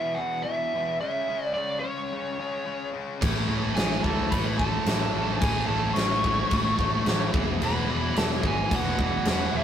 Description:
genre	hard rock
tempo	109 BPM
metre	4/4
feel	straight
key	unclear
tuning	A4 = 439 Hz
part	biting lead guitar	melody	0.0-9.6 s	C#5 to C#6	-29 LUFS	right 1 dB	overdrive
part	distorted electric guitar	riff	0.0-9.6 s	E2 to C#4	-34 LUFS	left 5 dB	overdrive
part	high-gain distorted guitar	riff	3.2-9.6 s	A2 to E4	-35 LUFS	equal	none
part	scooped high-gain guitar	riff	3.2-9.6 s	E2 to A3	-31 LUFS	right 4 dB	distortion
part	overdriven picked electric bass	bass	3.2-9.6 s	E1 to A2	-31 LUFS	equal	none
part	huge arena drum kit	drums	3.2-9.4 s	crash cymbal, kick drum, snare drum	-26 LUFS	equal	none
part	octave-fuzz lead guitar	second line	3.8-9.6 s	E4 to C#5	-36 LUFS	right 1 dB	none
room	moderate small room reverb, RT60 0.5 s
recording	rough rehearsal-room recording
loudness	-23 LUFS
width	side -9 dB against mid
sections	0.0-9.6 A section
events	none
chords	0.0 E5; 1.0 C#m; 3.2 A; 7.3 E

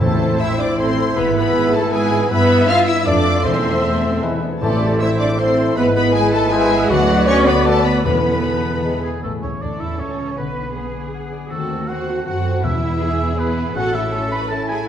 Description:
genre	classical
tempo	158 BPM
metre	3/4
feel	straight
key	A minor, A major from 6.9 s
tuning	A4 = 442 Hz
part	warm symphonic violin section	melody	0.0-14.9 s	G#4 to F6	-26 LUFS	left 5 dB	none
part	dark clarinet	second line	0.0-9.0 s	F#4 to F5	-25 LUFS	left 1 dB	none
part	flute section	second line	0.0-9.0 s	F#4 to F5	-26 LUFS	left 1 dB	none
part	warm oboe	second line	0.0-14.9 s	E4 to B5	-28 LUFS	right 2 dB	none
part	warm symphonic violin section	second line	0.0-14.9 s	A3 to F5	-26 LUFS	left 2 dB	none
part	mellow bassoon	accompaniment	0.0-8.9 s	E3 to C4	-25 LUFS	right 3 dB	none
part	warm symphonic viola section	accompaniment	0.0-14.8 s	G#3 to E5	-26 LUFS	right 1 dB	none
part	mellow French horn section	sustained chords	0.0-9.0 s	A3 to A4	-23 LUFS	left 2 dB	none
part	concert harp	arpeggios	0.0-14.9 s	E2 to E6	-26 LUFS	left 7 dB	none
part	dark trumpet section	stabs	0.0-9.0 s	B4 to E5	-27 LUFS	right 1 dB	none
part	rich symphonic cello section	bass	0.0-14.9 s	F#3 to B4	-24 LUFS	right 2 dB	none
part	warm studio double bass section	bass	0.0-14.8 s	G#1 to G2	-24 LUFS	right 4 dB	none
part	timpani	percussion	0.0-0.6, 3.5-5.2, 8.1-8.6, 12.6-13.2 s	E2 to A2	-25 LUFS	equal	none
room	wet recital hall reverb, RT60 1.6 s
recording	dark, warm production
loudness	-15 LUFS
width	side -9 dB against mid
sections	0.0-9.2 A section; 9.2-14.9 B section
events	none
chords	0.0 Am; 1.2 E/G#; 2.3 Em/G; 3.1 Dm/F; 3.5 Am/E; 4.2 E; 4.6 Am; 5.8 E/G#; 6.9 Bm/D; 8.1 Esus4; 8.8 E; 9.2 A; 10.4 Bm; 11.5 D#dim7; 12.6 E; 13.8 A

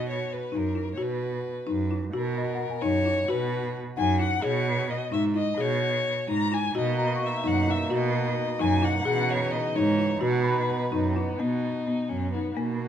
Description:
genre	contemporary instrumental, chamber music in an uneven meter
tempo	260 BPM (eighths)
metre	5/8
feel	straight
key	B major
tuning	A4 = 440 Hz
part	dark violin	melody	0.0-12.9 s	A#3 to A#5	-30 LUFS	left 4 dB	none
part	folk marimba with medium mallets	arpeggios	0.0-12.8 s	A#3 to G#4	-29 LUFS	left 3 dB	none
part	rich cello	bass	0.0-12.9 s	F#2 to B2	-28 LUFS	right 5 dB	none
part	celesta	texture	2.4-4.6, 7.0-11.6 s	D#5 to C#6	-35 LUFS	left 4 dB	none
part	pedal harmonium	sustained chords	6.7-11.4 s	B2 to D#4	-32 LUFS	right 2 dB	none
room	moderate recital hall reverb, RT60 1.4 s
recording	none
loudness	-24 LUFS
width	side -9 dB against mid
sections	0.0-2.1 A section; 2.1-11.4 B section; 11.4-12.9 A section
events	none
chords	0.0 B; 4.4 C#sus2; 6.7 Bmaj7; 9.0 C#madd9/B; 10.2 B; 11.4 Bmaj7

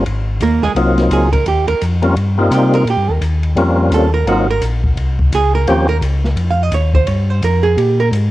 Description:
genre	soul jazz organ trio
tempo	171 BPM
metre	4/4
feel	swing 62% on 8ths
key	Eb mixolydian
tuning	A4 = 440 Hz
part	percussive tonewheel organ	melody	0.0-5.9 s	F3 to G4	-16 LUFS	left 1 dB	slow rotary speaker, overdrive, chorus vibrato, cassette tape
part	mellow tonewheel organ	bass	0.0-8.3 s	Ab1 to C3	-15 LUFS	left 1 dB	slow rotary speaker
part	open jazz drum kit	drums	0.1-8.2 s	hi-hat, kick drum, ride cymbal, snare drum	-24 LUFS	left 1 dB	cassette tape
part	archtop guitar, miked and amplified	accompaniment	0.4-8.1 s	Ab3 to F5	-17 LUFS	right 5 dB	cassette tape
room	light reverb, small room ambience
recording	home recording on cassette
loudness	-12 LUFS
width	side -16 dB against mid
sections	0.0-8.3 A section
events	hollow-body jazz guitar solo 0.0-8.3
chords	0.1 Ab13; 1.5 Eb13; 4.3 Ab13; 5.7 Eb9

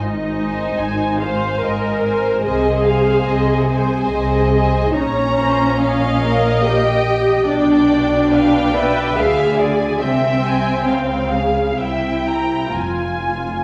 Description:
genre	classical, slow romantic movement for string orchestra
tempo	71 BPM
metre	3/4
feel	rubato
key	F minor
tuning	A4 = 440 Hz
part	muted studio violin section	melody	0.0-13.6 s	B4 to Ab5	-26 LUFS	equal	none
part	muted studio viola section	accompaniment	0.0-13.6 s	C4 to C5	-20 LUFS	equal	none
part	muted studio cello section	bass	0.0-13.6 s	F2 to D3	-26 LUFS	equal	none
part	muted studio double bass section	bass	0.0-13.6 s	F1 to D2	-26 LUFS	equal	none
part	muted studio violin section	second line	0.4-13.6 s	C5 to Bb5	-25 LUFS	equal	none
room	wet scoring stage reverb, RT60 1.6 s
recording	heard from further back in the room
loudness	-17 LUFS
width	mono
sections	0.0-13.6 A section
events	none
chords	0.0 Fm/Ab (rootless); 2.4 Ab/C; 5.0 Gdim/Bb; 7.5 Bdim7; 10.0 C; 10.9 Db; 11.8 C7; 12.7 Fm

